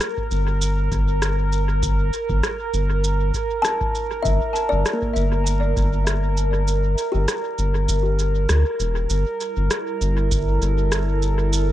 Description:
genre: ambient dub.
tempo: 99 BPM.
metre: 4/4.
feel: swing 55% on 16ths.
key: G dorian.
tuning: A4 = 437 Hz.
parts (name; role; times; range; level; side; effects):
warbly tape-like pad; sustained chords; 0.0-11.7 s; G3 to Bb4; -26 LUFS; right 2 dB; chorus, built-in reverb.
electronic rim click and shaker; drums; 0.0-11.7 s; none; -27 LUFS; equal; dub echo.
electronic kick drum; drums; 0.2-5.9, 10.3-10.4 s; none; -27 LUFS; equal; none.
round analog bass; bass; 0.3-11.7 s; E1 to D2; -20 LUFS; equal; none.
kalimba; arpeggios; 3.6-8.5 s; Bb3 to A5; -27 LUFS; left 3 dB; tape echo.
room: light reverb, digital ambience.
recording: echo-heavy mix.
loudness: -19 LUFS.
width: side -13 dB against mid.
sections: 0.0-9.1 A section; 9.1-11.7 B section.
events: kick drops out 6.7-9.1; band accent 8.5-8.8.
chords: 0.0 Gm; 9.1 Gm69.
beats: 0.01 0.61 1.22 | 1.83 2.43 3.04 3.65 | 4.25 4.86 5.46 6.07 | 6.68 7.28 7.89 8.49 | 9.10 9.71 10.31 10.92 | 11.52.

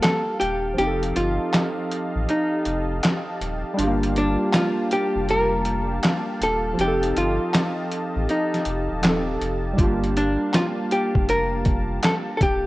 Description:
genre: lo-fi hip hop.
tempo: 80 BPM.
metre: 4/4.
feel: swing 66% on 16ths.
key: G minor.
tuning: A4 = 440 Hz.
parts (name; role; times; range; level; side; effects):
archtop guitar, miked and amplified; melody; 0.0-12.7 s; D4 to Bb4; -24 LUFS; equal; low-pass filter.
warbly lo-fi synth keys; accompaniment; 0.0-12.7 s; F3 to A4; -27 LUFS; right 1 dB; chorus, low-pass filter.
warm analog pad; sustained chords; 0.0-12.7 s; Bb3 to A5; -31 LUFS; equal; chorus, low-pass filter.
dusty soul sampler-style drum kit; drums; 0.0-12.6 s; handclaps, hi-hat, kick drum, snare drum; -23 LUFS; equal; overdrive.
warm sub bass; bass; 0.4-12.7 s; Eb1 to A1; -27 LUFS; equal; none.
room: light reverb.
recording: worn, warbling old tape, cassette tape, warbly pitch drift.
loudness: -20 LUFS.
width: side -18 dB against mid.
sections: 0.0-12.7 A section.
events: break 0.0-9.8.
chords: 0.0 Gm9; 0.8 F9; 3.8 Gm9; 6.8 F9; 9.8 Gm9.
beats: 0.03 | 0.78 1.53 2.28 3.03 | 3.78 4.53 5.28 6.03 | 6.78 7.53 8.28 9.03 | 9.78 10.53 11.28 12.03.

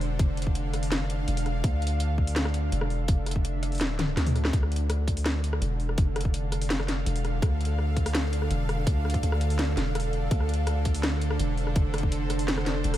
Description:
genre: half-time drum and bass.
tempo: 166 BPM.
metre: 4/4.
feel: half-time.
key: D minor.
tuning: A4 = 440 Hz.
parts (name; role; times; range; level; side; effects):
bowed-like drone; sustained chords; 0.0-13.0 s; D3 to F5; -33 LUFS; right 2 dB; built-in reverb, sidechain pumping.
long sustained 808-style bass; bass; 0.0-13.0 s; E1 to D2; -27 LUFS; equal; none.
drum and bass drum kit; drums; 0.0-13.0 s; hi-hat, rim click, snare drum, toms; -32 LUFS; left 1 dB; none.
electronic kick drum; drums; 0.2-12.1 s; none; -25 LUFS; equal; none.
pulsing gated texture; texture; 5.0-13.0 s; A4; -40 LUFS; right 1 dB; chorus, built-in reverb.
room: digital ambience.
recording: none.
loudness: -24 LUFS.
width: side -13 dB against mid.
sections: 0.0-4.5 A section; 4.5-13.0 A section.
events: drop 0.0-4.5, 4.5-13.0; drum fill 4.0-4.5.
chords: 0.0 Dm.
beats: | 0.19 0.56 0.92 1.28 | 1.64 2.00 2.36 2.72 | 3.08 3.45 3.81 4.17 | 4.53 4.89 5.25 5.62 | 5.98 6.34 6.70 7.06 | 7.42 7.78 8.15 8.51 | 8.87 9.23 9.59 9.95 | 10.31 10.68 11.04 11.40 | 11.76 12.12 12.48 12.84.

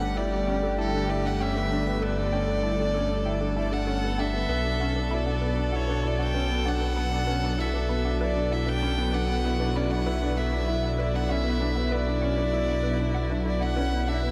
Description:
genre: piano and strings electronica.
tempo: 97 BPM.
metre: 4/4.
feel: straight.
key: B minor.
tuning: A4 = 439 Hz.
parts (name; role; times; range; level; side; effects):
dark violin; melody; 0.0-14.3 s; A4 to G5; -33 LUFS; equal; none.
dark string quartet; sustained chords; 0.0-14.3 s; D3 to A4; -33 LUFS; equal; none.
warbly dusty pluck; arpeggios; 0.0-14.3 s; A4 to B5; -42 LUFS; equal; none.
warm upright piano; riff; 0.0-14.3 s; B3 to E4; -35 LUFS; equal; lush chorus, diffuse ambient delay.
dark detuned saw bass; bass; 0.0-14.3 s; G1 to B1; -30 LUFS; equal; none.
room: wet lush hall reverb, RT60 2.8 s.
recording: dreamy mix soaked in reverb.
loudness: -26 LUFS.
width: mono.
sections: 0.0-14.3 A section.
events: none.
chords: 0.0 Gsus2; 4.5 Bm.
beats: 0.16 0.78 1.40 | 2.02 2.64 3.26 3.88 | 4.49 5.11 5.73 6.35 | 6.97 7.59 8.21 8.82 | 9.44 10.06 10.68 11.30 | 11.92 12.54 13.15 13.77.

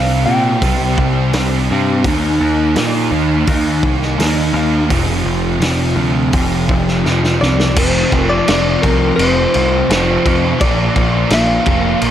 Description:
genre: rock, shoegaze and dream pop.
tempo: 84 BPM.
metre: 4/4.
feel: straight.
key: unclear.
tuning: A4 = 437 Hz.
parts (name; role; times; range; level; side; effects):
direct-recorded clean electric guitar; melody; 0.0-1.6, 7.4-12.0 s; Bb4 to G5; -18 LUFS; left 1 dB; slapback echo.
fuzz guitar; riff; 0.0-12.1 s; F2 to Eb4; -16 LUFS; right 1 dB; distortion, analog chorus.
growling picked electric bass; bass; 0.0-12.1 s; F1 to Bb2; -18 LUFS; equal; overdrive.
loose indie drum kit; drums; 0.6-12.1 s; crash cymbal, hi-hat, kick drum, snare drum; -18 LUFS; equal; none.
room: light reverb, small room ambience.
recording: none.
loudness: -12 LUFS.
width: side -10 dB against mid.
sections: 0.0-7.8 A section; 7.8-12.1 B section.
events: drum fill 7.0-7.8.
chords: 0.0 C5; 2.0 Eb5; 4.9 F5; 10.6 Bb.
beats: 0.61 1.32 | 2.04 2.75 3.47 4.18 | 4.90 5.61 6.33 7.04 | 7.75 8.46 9.18 9.89 | 10.60 11.31 12.02.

